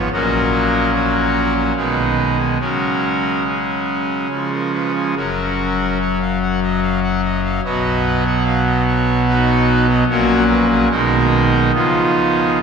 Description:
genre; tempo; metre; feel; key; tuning
classical, chorale-style piece for pipe organ; 72 BPM; 3/4; rubato; F# major; A4 = 440 Hz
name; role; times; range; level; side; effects
pipe organ, trumpet; solo; 0.0-12.6 s; F#1 to F#5; -14 LUFS; equal; none
room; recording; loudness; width
wet church reverb, RT60 3.5 s; none; -14 LUFS; side -6 dB against mid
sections
0.0-12.6 A section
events
none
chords
0.1 F#/A#; 1.8 G#m/B; 2.6 C#sus4; 4.3 C#; 5.2 F#; 7.6 B; 10.1 F#/A#; 10.9 G#m/B; 11.7 C#9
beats
| 0.12 0.93 1.76 | 2.60 3.46 4.31 | 5.17 6.01 6.83 | 7.65 8.46 9.27 | 10.08 10.90 11.74 | 12.61

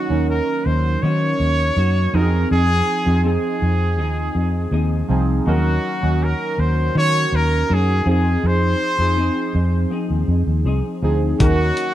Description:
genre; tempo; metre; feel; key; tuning
indie pop, bedroom pop; 81 BPM; 4/4; straight; unclear; A4 = 441 Hz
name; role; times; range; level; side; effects
clear trumpet; melody; 0.0-11.9 s; Gb4 to Db5; -22 LUFS; equal; lush chorus
semi-hollow electric guitar; accompaniment; 0.0-11.9 s; Eb3 to Ab4; -29 LUFS; left 7 dB; analog chorus, vibrato effect
warbly lo-fi synth keys; accompaniment; 0.0-11.9 s; F3 to Bb4; -24 LUFS; right 3 dB; chorus, phaser, cassette tape
vintage muted fingered electric bass; bass; 0.1-11.7 s; C2 to Eb3; -18 LUFS; equal; none
dusty soul sampler-style drum kit; drums; 11.4-11.9 s; hi-hat, kick drum; -17 LUFS; equal; none
room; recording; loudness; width
little or no reverb; rough home demo mix; -16 LUFS; side -12 dB against mid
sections
0.0-11.9 A section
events
none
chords
0.0 Ebm7; 2.1 Fm7; 5.5 Ebm7; 8.1 Fm7; 11.4 Ebm7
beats
0.28 1.03 1.77 | 2.51 3.25 3.99 4.73 | 5.47 6.22 6.96 7.70 | 8.44 9.18 9.92 10.66 | 11.41

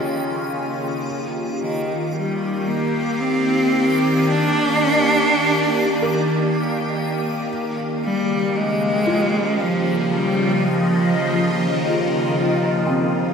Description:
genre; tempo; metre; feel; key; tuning
ambient; 56 BPM; 3/4; straight; Eb major; A4 = 440 Hz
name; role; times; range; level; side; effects
clear cello; melody; 0.0-13.3 s; Eb3 to D4; -21 LUFS; equal; tape echo
evolving wavetable pad; sustained chords; 0.0-13.3 s; Db3 to Eb5; -22 LUFS; equal; phaser, built-in reverb
felt-muted upright piano; arpeggios; 0.0-1.1, 6.0-13.3 s; C4 to Bb4; -30 LUFS; equal; tape echo
organ-like drone; drone; 0.0-13.3 s; Eb3 to Bb3; -29 LUFS; equal; ensemble chorus, built-in reverb
backwards swelling texture; texture; 0.0-13.3 s; G4 to Eb7; -29 LUFS; right 1 dB; built-in reverb
room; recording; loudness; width
wet concert hall reverb, RT60 2.2 s; none; -17 LUFS; side -6 dB against mid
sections
0.0-13.3 A section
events
fade-in on synth drone 0.0-13.3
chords
0.0 Dbadd9; 1.0 Ebmaj7; 7.5 Dbadd9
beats
| 1.05 2.12 3.19 | 4.26 5.33 6.41 | 7.48 8.55 9.62 | 10.69 11.76 12.83

